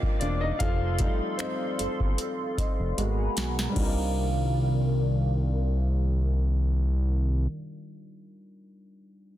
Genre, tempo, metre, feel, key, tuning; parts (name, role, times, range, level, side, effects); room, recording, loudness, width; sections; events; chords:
contemporary R&B; 76 BPM; 4/4; swing 54% on 16ths; C dorian; A4 = 438 Hz
warm grand piano; accompaniment; 0.0-9.4 s; G3 to G5; -35 LUFS; left 2 dB; low-pass filter
hollow soft pad; sustained chords; 0.0-7.5 s; Eb3 to D6; -34 LUFS; left 1 dB; ensemble chorus, low-pass filter
nylon-string guitar; arpeggios; 0.0-7.6 s; C3 to A4; -37 LUFS; right 4 dB; low-pass filter, ping-pong delay
booming analog drum machine; drums; 0.0-4.0 s; crash cymbal, finger snaps, hi-hat, kick drum, snare drum; -29 LUFS; equal; soft clipping on snare
downlifter; sound effects; 0.0-3.8 s; -48 LUFS; equal
fat analog bass; bass; 0.2-7.5 s; E1 to C2; -25 LUFS; equal
digital ambience; dense, heavily limited modern master; -24 LUFS; side -13 dB against mid
0.0-3.8 A section; 3.8-6.9 B section
grand piano solo 0.0-3.8; filter sweep 0.0-3.8; drum fill 3.0-3.8
0.0 Cm11; 0.6 F7; 3.0 Abm9; 3.8 Cm11